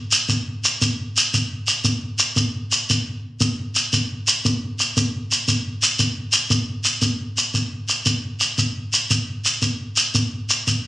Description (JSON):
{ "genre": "southern african traditional", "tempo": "116 BPM (dotted quarters)", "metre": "12/8", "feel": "straight", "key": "none", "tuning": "none", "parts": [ { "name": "shekere", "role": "percussion", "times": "0.1-10.8 s", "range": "none", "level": "-18 LUFS", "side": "equal", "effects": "none" } ], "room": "wet studio reverb, RT60 0.6 s", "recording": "recorded on a phone in the room, club reverb, compression", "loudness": "-18 LUFS", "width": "side -17 dB against mid", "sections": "0.0-7.5 A section; 7.5-10.9 A section", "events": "none", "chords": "none", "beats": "0.29 0.81 | 1.33 1.85 2.36 2.88 | 3.40 3.92 4.43 4.95 | 5.47 5.99 6.50 7.02 | 7.54 8.06 8.58 9.10 | 9.62 10.14 10.66" }